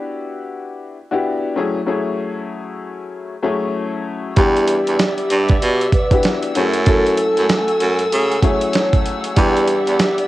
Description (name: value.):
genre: hip hop, boom-bap hip-hop.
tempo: 96 BPM.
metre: 4/4.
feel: swing 60% on 16ths.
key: E dorian.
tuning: A4 = 440 Hz.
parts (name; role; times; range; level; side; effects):
warm baby grand piano; accompaniment; 0.0-10.3 s; F#3 to A4; -21 LUFS; left 4 dB; cassette tape, high-pass filter, low-pass filter.
vibraphone with medium mallets; melody; 4.4-10.3 s; G4 to C#5; -19 LUFS; right 1 dB; high-pass filter, low-pass filter, analog delay.
warm studio string section; sustained chords; 4.4-10.3 s; A3 to E6; -26 LUFS; equal; high-pass filter, low-pass filter, cassette tape.
breathy baritone saxophone; bass; 4.4-10.0 s; E2 to C#3; -19 LUFS; right 2 dB; transformer saturation.
dusty soul sampler-style drum kit; drums; 4.4-10.3 s; hi-hat, kick drum, snare drum; -17 LUFS; right 2 dB; cassette tape.
room: light reverb, small room ambience.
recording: home recording on cassette.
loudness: -15 LUFS.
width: side -16 dB against mid.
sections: 0.0-4.4 A section; 4.4-10.3 B section.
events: none.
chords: 0.0 Em9; 1.6 F#m9; 4.4 Em9; 6.6 F#m9; 9.4 Em9.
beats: 0.62 1.24 | 1.87 2.49 3.12 3.74 | 4.37 4.99 5.62 6.24 | 6.87 7.49 8.12 8.74 | 9.37 9.99.